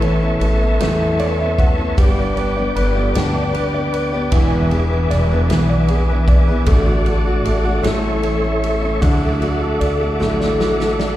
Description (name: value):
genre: six-eight pop ballad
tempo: 51 BPM (dotted quarters)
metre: 6/8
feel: straight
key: D major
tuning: A4 = 435 Hz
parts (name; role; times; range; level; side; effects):
- warm grand piano; accompaniment; 0.0-11.2 s; D3 to F#5; -21 LUFS; right 2 dB; slapback echo
- tonewheel organ; sustained chords; 0.0-11.2 s; A4 to D6; -23 LUFS; left 1 dB; chorus vibrato, fast rotary speaker
- picked steel-string acoustic guitar; arpeggios; 0.0-11.2 s; E2 to G#4; -22 LUFS; left 2 dB; none
- upright bass; bass; 0.0-11.2 s; E1 to E2; -19 LUFS; equal; none
- natural country drum kit; drums; 0.0-11.2 s; kick drum, ride cymbal, snare drum; -20 LUFS; equal; none
room: light reverb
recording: live gig heard through the venue's PA, recital hall reverb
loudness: -14 LUFS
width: side -14 dB against mid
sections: 0.0-11.2 A section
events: grand piano fill 0.8-2.0; drum fill 10.2-11.2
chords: 0.0 Aadd9; 2.0 G; 4.3 E7; 6.7 D/A; 7.8 A; 9.0 Dadd9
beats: 0.81 | 1.98 3.15 | 4.33 5.50 | 6.67 7.85 | 9.02 10.20